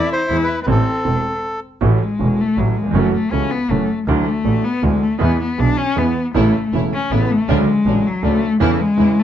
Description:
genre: tango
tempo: 159 BPM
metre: 3/4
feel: rubato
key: A major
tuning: A4 = 440 Hz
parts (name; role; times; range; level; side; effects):
- bandoneon; melody; 0.0-1.6 s; A4 to C5; -21 LUFS; equal; none
- warm cello; second line; 0.0-9.2 s; E3 to E4; -18 LUFS; left 3 dB; none
- warm concert grand piano; accompaniment; 0.0-9.1 s; E1 to A4; -21 LUFS; right 4 dB; none
- clear double bass; bass; 0.0-9.1 s; E1 to E2; -20 LUFS; right 1 dB; none
- warm studio string section; stabs; 6.3-9.1 s; F#3 to E4; -26 LUFS; equal; none
room: moderate studio reverb, RT60 0.5 s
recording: dark, warm production, nothing above 7.9 kHz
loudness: -15 LUFS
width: side -10 dB against mid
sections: 0.0-1.8 A section; 1.8-9.2 B section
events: stop 1.4-1.8; cello solo 1.8-9.2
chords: 0.3 E; 0.7 Am; 1.8 A6; 3.0 F#m7; 4.1 Dadd9; 5.2 E; 6.4 A; 7.5 Dmaj7; 8.6 A/E

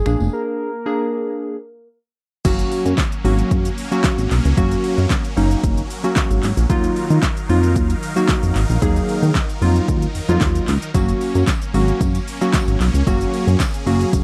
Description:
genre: dance-pop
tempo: 113 BPM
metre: 4/4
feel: straight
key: unclear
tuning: A4 = 440 Hz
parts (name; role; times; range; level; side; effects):
- soft octave-layered synth lead; melody; 0.0-1.9 s; Ab4 to Bb4; -28 LUFS; equal; chorus, slapback echo
- chorused synth bass; bass; 0.0-14.2 s; F1 to Eb3; -20 LUFS; equal; sidechain pumping
- warm analog keys; accompaniment; 0.1-14.2 s; Gb3 to Ab4; -23 LUFS; equal; chorus, sidechain pumping
- deep house drum kit; drums; 0.1-14.2 s; crash cymbal, finger snaps, handclaps, hi-hat, kick drum, shaker, snare drum; -23 LUFS; equal; overdrive
- tambourine; percussion; 0.1-0.3, 10.9-14.2 s; none; -43 LUFS; equal; none
- supersaw chords; sustained chords; 2.4-14.2 s; Eb3 to F5; -31 LUFS; equal; phaser, sidechain pumping
room: little or no reverb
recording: dry, close 1970s-style studio recording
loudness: -18 LUFS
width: mono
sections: 0.0-2.4 A section; 2.4-14.2 B section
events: break 0.3-2.4; drop 2.4-14.2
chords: 0.1 Bb7; 2.4 Gb; 6.7 Ebmadd9; 10.9 Gb

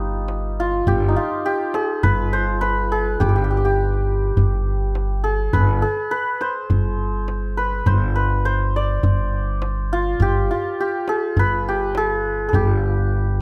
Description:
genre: Persian modal ensemble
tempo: 103 BPM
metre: 4/4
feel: straight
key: G dastgah homayun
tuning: A4 = 440 Hz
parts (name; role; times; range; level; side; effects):
- santur; melody; 0.0-13.4 s; Eb4 to D5; -24 LUFS; equal; none
- upright bass; bass; 0.0-13.4 s; G1; -24 LUFS; equal; none
- tombak; percussion; 0.3-13.3 s; none; -24 LUFS; equal; none
room: little or no reverb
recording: close, detailed microphones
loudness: -20 LUFS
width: mono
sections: 0.0-13.4 A section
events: none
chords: none

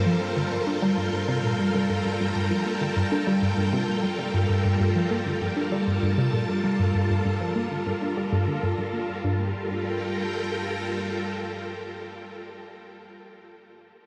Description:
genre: ambient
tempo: 98 BPM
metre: 4/4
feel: straight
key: G minor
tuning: A4 = 440 Hz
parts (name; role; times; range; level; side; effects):
- string machine, full ensemble; sustained chords; 0.0-12.5 s; G3 to A5; -29 LUFS; equal; ensemble chorus
- tight sequenced synth; riff; 0.0-9.5 s; G2 to D4; -28 LUFS; equal; chorus, analog delay
- analog drone; bass; 0.7-11.0 s; G2; -43 LUFS; equal; none
room: wet huge ambient reverb, RT60 7.6 s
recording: none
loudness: -26 LUFS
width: mono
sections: 0.0-9.2 A section; 9.2-11.7 B section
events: none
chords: 0.0 Gm7

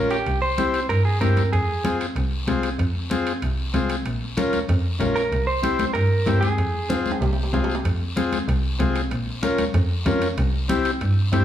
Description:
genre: latin, cumbia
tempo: 190 BPM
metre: 4/4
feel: straight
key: F harmonic minor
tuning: A4 = 440 Hz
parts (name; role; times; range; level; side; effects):
- direct-recorded clean electric guitar; second line; 0.0-2.0, 5.2-7.6 s; G4 to C5; -25 LUFS; right 2 dB; none
- combo organ; accompaniment; 0.0-11.4 s; C4 to Bb4; -25 LUFS; left 2 dB; none
- clear double bass; bass; 0.0-11.4 s; Bb1 to G2; -23 LUFS; right 1 dB; none
- guiro; percussion; 0.1-11.4 s; none; -37 LUFS; left 4 dB; none
- timbales; percussion; 0.1-11.4 s; none; -35 LUFS; right 3 dB; none
- congas; percussion; 0.4-11.4 s; none; -29 LUFS; left 4 dB; none
room: moderate large studio reverb, RT60 1.0 s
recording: heard from further back in the room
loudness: -20 LUFS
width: side -11 dB against mid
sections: 0.0-7.8 A section; 7.8-11.4 B section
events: clean electric guitar solo 0.0-7.8; drum fill 6.9-7.8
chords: 0.3 C7; 1.5 Fm; 4.1 Bbm; 5.3 C7; 6.6 Fm; 9.1 Bbm; 10.4 C

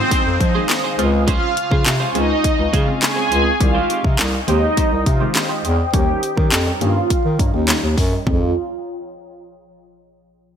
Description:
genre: dance-pop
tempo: 103 BPM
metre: 4/4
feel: straight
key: F minor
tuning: A4 = 440 Hz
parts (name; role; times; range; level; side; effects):
- supersaw pad; melody; 0.0-8.5 s; C4 to Ab5; -22 LUFS; right 1 dB; phaser, sidechain pumping, low-pass filter, ping-pong delay
- punchy chord stab; accompaniment; 0.0-8.5 s; Db3 to Ab4; -26 LUFS; left 2 dB; chorus, sidechain pumping, low-pass filter
- ethereal airy pad; sustained chords; 0.0-8.5 s; C4 to Eb6; -28 LUFS; equal; ensemble chorus, built-in reverb, sidechain pumping, low-pass filter
- twelve-string electric guitar; riff; 0.0-8.4 s; F3 to C5; -28 LUFS; right 8 dB; lush chorus, low-pass filter
- downlifter; sound effects; 0.0-3.6 s; none; -34 LUFS; left 1 dB; none
- house drum kit; drums; 0.1-8.4 s; handclaps, hi-hat, kick drum, snare drum, toms; -19 LUFS; equal; none
- breathy bass clarinet; bass; 0.3-8.5 s; C2 to F3; -19 LUFS; equal; sidechain pumping
room: light reverb, digital ambience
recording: bright 1980s-style digital production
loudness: -15 LUFS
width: side -8 dB against mid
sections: 0.0-8.3 A section; 8.3-10.6 B section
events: filter sweep 0.0-8.3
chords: 0.0 Fm7; 1.0 Dbmaj7; 3.6 Abmaj7/C; 5.9 Eb7; 8.3 Fm7

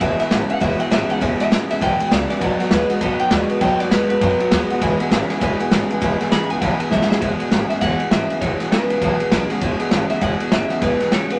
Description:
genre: rockabilly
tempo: 200 BPM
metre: 4/4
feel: swing 62% on 8ths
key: E major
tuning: A4 = 436 Hz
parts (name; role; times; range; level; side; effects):
- electric guitar through a small old amp; melody; 0.0-11.4 s; B4 to B5; -24 LUFS; equal; none
- dark upright piano; accompaniment; 0.0-7.2 s; B4 to G#5; -32 LUFS; equal; none
- picked steel-string acoustic guitar; accompaniment; 0.0-11.4 s; E2 to G#4; -27 LUFS; equal; none
- electric guitar through a small old amp; riff; 0.0-11.4 s; E2 to G#3; -27 LUFS; equal; spring reverb
- upright bass; bass; 0.0-11.4 s; E1 to F#2; -28 LUFS; equal; none
- vintage drum kit; drums; 0.0-11.4 s; kick drum, ride cymbal, snare drum; -23 LUFS; equal; none
room: moderate studio reverb, RT60 0.6 s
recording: none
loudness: -19 LUFS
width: mono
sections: 0.0-7.2 A section; 7.2-11.4 B section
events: clean electric guitar solo 0.0-7.2; drum fill 6.9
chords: 0.0 E; 2.4 B; 4.8 E

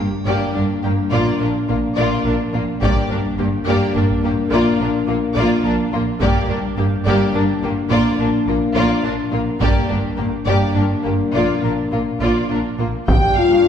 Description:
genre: cinematic, epic orchestral film score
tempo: 70 BPM (dotted quarters)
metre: 6/8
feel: straight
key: G minor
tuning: A4 = 440 Hz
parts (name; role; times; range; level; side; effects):
- warm symphonic violin section; melody; 0.0-13.7 s; F4 to G5; -26 LUFS; left 4 dB; none
- warm symphonic violin section; second line; 0.0-13.7 s; Bb3 to G5; -23 LUFS; equal; none
- rich symphonic viola section; accompaniment; 0.0-13.7 s; Bb3 to D4; -25 LUFS; equal; none
- dark French horn section; sustained chords; 0.0-13.7 s; Bb3 to G4; -22 LUFS; left 4 dB; none
- clear symphonic cello section; bass; 0.0-13.7 s; G2 to Bb2; -23 LUFS; right 2 dB; none
- rich symphonic double bass section; bass; 0.0-13.7 s; G1 to Bb1; -24 LUFS; right 2 dB; none
- taiko ensemble; drums; 2.8-13.6 s; none; -21 LUFS; equal; none
room: wet scoring stage reverb, RT60 1.8 s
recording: heard from further back in the room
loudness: -16 LUFS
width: side -8 dB against mid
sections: 0.0-13.1 A section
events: build-up 0.0-13.1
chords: 0.0 Gm; 1.1 Bb; 2.8 Gm; 4.5 Bb; 6.2 Gm; 7.9 Bb; 9.6 Gm; 11.3 Bb; 13.1 Gm

